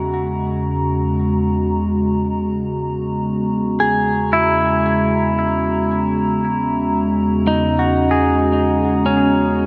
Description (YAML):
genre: ambient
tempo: 57 BPM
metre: 4/4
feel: straight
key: unclear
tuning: A4 = 441 Hz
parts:
  - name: warbly tape-like pad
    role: sustained chords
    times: 0.0-9.7 s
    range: E2 to A#5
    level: -19 LUFS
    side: equal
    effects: chorus, built-in reverb
  - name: clean electric guitar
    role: arpeggios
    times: 3.8-9.7 s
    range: C#4 to G#4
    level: -22 LUFS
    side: equal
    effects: delay
room: wet huge ambient reverb, RT60 8.2 s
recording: none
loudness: -18 LUFS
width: mono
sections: 0.0-9.7 A section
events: none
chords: 0.0 Badd9/E (rootless)